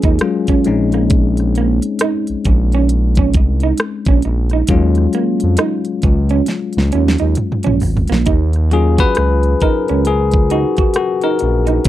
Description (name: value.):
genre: R&B, neo-soul.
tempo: 67 BPM.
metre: 4/4.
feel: swing 60% on 16ths.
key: Eb minor.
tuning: A4 = 444 Hz.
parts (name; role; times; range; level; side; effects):
electric guitar through a small old amp; second line; 0.0-11.8 s; Bb3 to Gb4; -19 LUFS; right 10 dB; vibrato effect.
barky tine electric piano; accompaniment; 0.0-11.9 s; Gb3 to Cb5; -18 LUFS; left 6 dB; none.
smooth synth bass; bass; 0.0-11.9 s; Ab1 to F2; -15 LUFS; equal; none.
pop drum kit; drums; 0.0-11.9 s; hi-hat, kick drum, rim click, snare drum, toms; -16 LUFS; equal; none.
room: little or no reverb.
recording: dry, close 1970s-style studio recording.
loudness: -12 LUFS.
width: side -13 dB against mid.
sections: 0.0-8.3 A section; 8.3-11.9 B section.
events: tine electric piano solo 0.0-8.3, 8.3-11.9; drum fill 6.5-8.3.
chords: 0.0 Ebm11; 0.7 Bbm11; 4.7 Ebm11; 8.3 Ebm9.